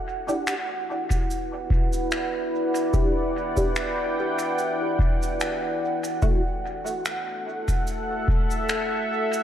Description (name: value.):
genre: ambient dub.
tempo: 73 BPM.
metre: 4/4.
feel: swing 54% on 16ths.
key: E minor.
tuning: A4 = 440 Hz.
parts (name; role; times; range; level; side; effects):
deep dark ambient pad; sustained chords; 0.0-9.4 s; E4 to G5; -26 LUFS; equal; chorus, built-in reverb.
filtered dub chord stab; stabs; 0.3-6.4 s; A3 to G4; -32 LUFS; equal; phaser, ensemble chorus, dub echo.
cabasa and finger snaps; drums; 0.3-9.4 s; none; -33 LUFS; left 1 dB; studio reverb, dub echo.
electronic kick drum; drums; 1.1-8.5 s; none; -24 LUFS; equal; studio reverb.
room: light reverb, small room ambience.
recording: dark, warm production.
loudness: -23 LUFS.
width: side -10 dB against mid.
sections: 0.0-9.4 A section.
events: none.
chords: 0.0 Em7; 6.2 F#m7.